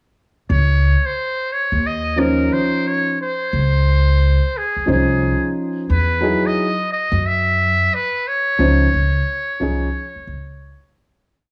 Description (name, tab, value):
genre	hip hop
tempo	89 BPM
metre	4/4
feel	swing 64% on 16ths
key	Db major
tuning	A4 = 440 Hz
part	trumpet with metal mute	melody	0.5-11.0 s	Ab4 to E5	-22 LUFS	equal	plate reverb, analog delay
part	upright bass	bass	0.5-10.7 s	C2 to F#2	-20 LUFS	equal	none
part	dark concert grand piano	accompaniment	2.2-9.9 s	F3 to C5	-22 LUFS	equal	plate reverb
room	light reverb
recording	worn, warbling old tape, cassette tape, warbly pitch drift, small room ambience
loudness	-18 LUFS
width	mono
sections	0.5-11.3 A section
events	fade-out 8.6-11.3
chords	0.5 Dbmaj9; 5.9 Emaj9; 8.6 Dbmaj9